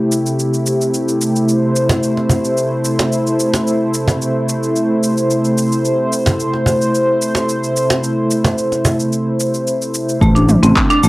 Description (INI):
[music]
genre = organic downtempo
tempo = 110 BPM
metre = 4/4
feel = straight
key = A minor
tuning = A4 = 440 Hz
[part]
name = warm analog pad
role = sustained chords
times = 0.0-11.1 s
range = C3 to C5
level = -15 LUFS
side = equal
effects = chorus, tremolo, sidechain pumping
[part]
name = deep house drum kit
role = drums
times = 0.1-11.1 s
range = handclaps, hi-hat, shaker, toms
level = -22 LUFS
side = equal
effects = overdrive, cassette tape
[part]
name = cajon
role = percussion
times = 1.9-9.0 s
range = none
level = -17 LUFS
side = right 1 dB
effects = none
[part]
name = marimba with hard mallets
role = arpeggios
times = 10.2-11.1 s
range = A3 to D4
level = -13 LUFS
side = equal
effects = vintage 12-bit sampler grit, analog delay, plate reverb
[part]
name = sustaining fretless electric bass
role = bass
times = 10.2-11.1 s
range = A1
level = -11 LUFS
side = equal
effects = none
[part]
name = electronic kick drum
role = drums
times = 10.2-10.9 s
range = none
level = -16 LUFS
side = equal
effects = cassette tape
[sound]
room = wet small room reverb, RT60 0.5 s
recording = home recording on cassette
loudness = -13 LUFS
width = side -19 dB against mid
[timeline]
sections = 0.0-10.2 A section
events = none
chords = 0.0 Am7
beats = 0.39 0.94 | 1.48 2.03 2.58 3.12 | 3.67 4.21 4.76 5.30 | 5.85 6.39 6.94 7.48 | 8.03 8.57 9.12 9.67 | 10.21 10.76